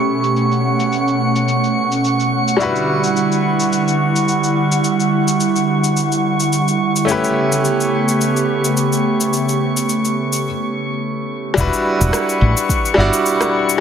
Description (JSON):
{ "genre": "sunset chillout", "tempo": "107 BPM", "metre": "4/4", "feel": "swing 55% on 16ths", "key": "E dorian", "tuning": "A4 = 441 Hz", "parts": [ { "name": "bright grand piano", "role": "accompaniment", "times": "0.0-13.8 s", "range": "G3 to D5", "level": "-20 LUFS", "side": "moving between left 4 dB and right 2 dB", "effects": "auto-pan, ping-pong delay" }, { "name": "airy breathy pad", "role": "sustained chords", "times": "0.0-11.5 s", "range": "B2 to F#5", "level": "-17 LUFS", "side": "right 1 dB", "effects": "chorus" }, { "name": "drifting glass-harmonics texture", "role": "texture", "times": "0.0-13.8 s", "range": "C#6", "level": "-23 LUFS", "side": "right 3 dB", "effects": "chorus, built-in reverb" }, { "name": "electronic cabasa and rim click", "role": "drums", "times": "0.2-13.8 s", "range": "none", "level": "-24 LUFS", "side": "left 2 dB", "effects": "overdrive, low-pass filter on perc, low-pass filter on snare, low-pass filter on room" }, { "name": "mellow fretless electric bass", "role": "bass", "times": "11.6-13.1 s", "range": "E1 to A1", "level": "-15 LUFS", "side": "equal", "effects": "lush chorus" }, { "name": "electronic kick drum", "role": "drums", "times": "11.6-12.8 s", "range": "none", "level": "-21 LUFS", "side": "equal", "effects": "overdrive" } ], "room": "moderate plate reverb, RT60 2.2 s", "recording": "heavily compressed radio sound, multiband compression", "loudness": "-14 LUFS", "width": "side -8 dB against mid", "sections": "0.0-11.6 A section; 11.6-13.8 B section", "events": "break 10.4-11.6", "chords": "0.0 A9; 2.6 Em9; 7.1 A9; 11.6 Em9" }